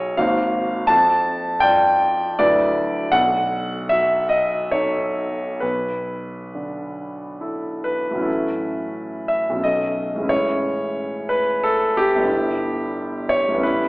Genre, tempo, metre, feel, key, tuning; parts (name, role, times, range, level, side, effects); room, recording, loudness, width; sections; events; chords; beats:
classical, impressionist solo piano; 65-92 BPM; 3/4; rubato; A4 = 440 Hz
clear concert grand piano; solo; 0.0-13.9 s; G1 to A5; -18 LUFS; equal
wet recital hall reverb, RT60 1.6 s; heard from further back in the room, AM radio sound; -18 LUFS; side -23 dB against mid
0.0-8.3 A section; 8.3-13.9 B section
0.2 G#13; 0.9 F69; 2.4 D69; 3.2 B9; 5.6 Bm7; 8.3 A6; 9.6 B9; 10.3 Amaj7; 12.3 G6
0.19 | 0.90 1.63 2.40 | 3.15 3.92 4.74 | 5.63 6.55 7.43 | 8.27 8.97 9.64 | 10.31 10.98 11.64 | 12.31 12.97 13.64